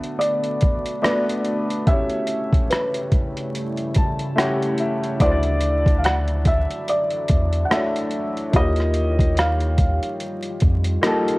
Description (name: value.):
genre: lo-fi hip hop.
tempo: 72 BPM.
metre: 4/4.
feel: swing 58% on 16ths.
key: unclear.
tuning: A4 = 440 Hz.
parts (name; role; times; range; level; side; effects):
warm upright piano; accompaniment; 0.0-11.4 s; A3 to A5; -25 LUFS; left 1 dB; cassette tape, low-pass filter.
deep dark ambient pad; sustained chords; 0.0-11.4 s; C#3 to F#4; -30 LUFS; equal; chorus, built-in reverb, low-pass filter.
boom bap sampler-style drum kit; drums; 0.0-11.4 s; hi-hat, kick drum, rim click; -20 LUFS; equal; none.
felt-muted upright piano; melody; 0.2-10.2 s; B4 to F#5; -24 LUFS; equal; low-pass filter, analog delay.
soft dub sub bass; bass; 5.2-11.0 s; D2 to E#2; -21 LUFS; equal; none.
room: light reverb.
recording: worn, warbling old tape, cassette tape, vinyl crackle, warbly pitch drift.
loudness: -18 LUFS.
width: side -21 dB against mid.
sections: 0.0-11.4 A section.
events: break 0.0-5.2.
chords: 0.0 Bm7; 1.9 A7; 5.2 Dmaj9; 8.5 D#9.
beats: 0.20 1.04 | 1.87 2.71 3.54 4.37 | 5.21 6.04 6.87 7.71 | 8.54 9.37 10.21 11.04.